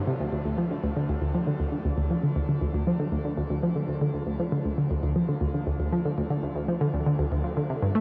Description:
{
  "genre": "ambient",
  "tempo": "118 BPM",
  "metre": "4/4",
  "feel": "straight",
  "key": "D minor",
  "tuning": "A4 = 442 Hz",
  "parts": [
    { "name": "analog pluck", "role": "solo", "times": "0.1-8.0 s", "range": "D2 to A3", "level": "-27 LUFS", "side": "equal", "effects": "chorus, analog delay" }
  ],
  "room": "wet shimmer reverb, RT60 8.4 s",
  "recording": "worn, warbling old tape, cassette tape, warbly pitch drift",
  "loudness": "-27 LUFS",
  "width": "mono",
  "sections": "0.0-8.0 A section",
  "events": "none",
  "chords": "none",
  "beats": "| 0.33 0.84 1.35 1.85 | 2.36 2.87 3.38 3.89 | 4.40 4.91 5.41 5.92 | 6.43 6.94 7.45 7.96"
}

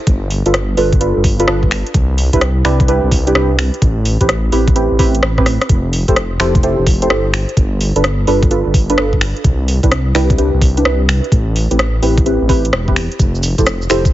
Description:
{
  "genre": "UK garage, two-step garage",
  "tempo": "128 BPM",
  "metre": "4/4",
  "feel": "swing 66% on 16ths",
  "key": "A minor",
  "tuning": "A4 = 440 Hz",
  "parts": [
    { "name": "dark detuned saw bass", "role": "bass", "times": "0.1-14.1 s", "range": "E1 to C2", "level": "-16 LUFS", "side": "equal", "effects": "none" },
    { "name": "electronic kick drum", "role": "drums", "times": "0.1-14.1 s", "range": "none", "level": "-13 LUFS", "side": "equal", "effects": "none" },
    { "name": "garage drum kit", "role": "drums", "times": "0.1-14.1 s", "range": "finger snaps, hi-hat, rim click, shaker", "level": "-19 LUFS", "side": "equal", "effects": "none" },
    { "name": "deep mellow chord stab", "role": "stabs", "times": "0.5-14.0 s", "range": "C4 to C5", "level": "-17 LUFS", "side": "right 1 dB", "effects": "chorus, tape echo" }
  ],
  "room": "light reverb",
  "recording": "heavily compressed radio sound, nothing above 7.6 kHz",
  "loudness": "-11 LUFS",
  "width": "side -14 dB against mid",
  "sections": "0.0-14.1 A section",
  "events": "drum fill 5.3-5.7",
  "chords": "0.0 G7; 1.9 Cmaj7; 3.8 Am7; 5.7 Fmaj7; 7.3 G7; 9.4 Cmaj7; 11.3 Am7; 13.2 Fmaj7",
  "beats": "| 0.07 0.54 1.01 1.48 | 1.95 2.42 2.88 3.35 | 3.82 4.29 4.76 5.23 | 5.70 6.17 6.63 7.10 | 7.57 8.04 8.51 8.98 | 9.45 9.91 10.38 10.85 | 11.32 11.79 12.26 12.73 | 13.20 13.66"
}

